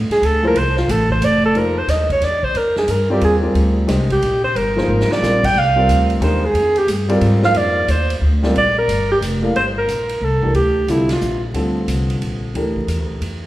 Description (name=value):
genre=modal jazz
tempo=180 BPM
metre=3/4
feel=swing 64% on 8ths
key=F dorian, G dorian from 9.6 s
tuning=A4 = 441 Hz
part: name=upright bass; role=bass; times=0.0-13.5 s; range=F1 to Ab2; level=-19 LUFS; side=equal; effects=none
part: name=breathy alto saxophone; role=melody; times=0.1-11.4 s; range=E4 to G5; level=-17 LUFS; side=right 1 dB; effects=none
part: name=swinging big-band drum kit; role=drums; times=0.1-13.3 s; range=crash cymbal, hi-hat, kick drum, ride cymbal, snare drum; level=-28 LUFS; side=right 1 dB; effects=none
part: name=warm upright piano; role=accompaniment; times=0.4-13.5 s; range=D3 to F5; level=-21 LUFS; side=left 1 dB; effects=none
room=wet recital hall reverb, RT60 1.8 s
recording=recorded in a church or concert hall, vinyl crackle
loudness=-14 LUFS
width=side -15 dB against mid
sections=0.0-1.6 A section; 1.6-9.6 A section; 9.6-13.5 B section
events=alto saxophone solo 0.0-9.6; drum fill 4.9-5.2; band accent 11.1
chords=0.0 F; 1.6 F7sus2; 3.6 Gm; 5.6 Fm9; 7.6 Gm; 9.6 Gm9